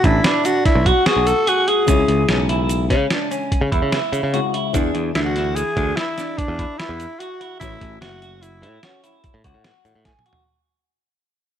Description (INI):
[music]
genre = progressive instrumental, band music in an uneven meter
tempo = 147 BPM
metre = 7/4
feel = straight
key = unclear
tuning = A4 = 440 Hz
[part]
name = growling tenor saxophone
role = melody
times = 0.0-9.2 s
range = C#4 to A4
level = -21 LUFS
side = equal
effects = none
[part]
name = dark concert grand piano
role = accompaniment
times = 0.0-10.4 s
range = B2 to C#5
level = -29 LUFS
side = left 11 dB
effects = none
[part]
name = clean electric guitar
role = arpeggios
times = 0.0-10.4 s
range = C#4 to G#4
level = -23 LUFS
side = equal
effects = phaser, slapback echo
[part]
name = modern bright picked electric bass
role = bass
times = 0.0-10.1 s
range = F#1 to C#3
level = -21 LUFS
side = right 1 dB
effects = none
[part]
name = dusty soul sampler-style drum kit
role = drums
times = 0.0-10.4 s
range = hi-hat, kick drum, snare drum, toms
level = -21 LUFS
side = right 1 dB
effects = none
[part]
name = tube shaker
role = percussion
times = 0.5-10.0 s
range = none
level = -37 LUFS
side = right 14 dB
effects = none
[sound]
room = light reverb, studio reverb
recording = 1960s-style stereo with parts hard left and right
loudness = -16 LUFS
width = side -9 dB against mid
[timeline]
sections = 0.0-10.5 A section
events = fade-out 0.0-10.5; drum fill 10.1-10.5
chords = 0.0 Bm7; 1.9 C#m; 4.7 E7; 7.6 A6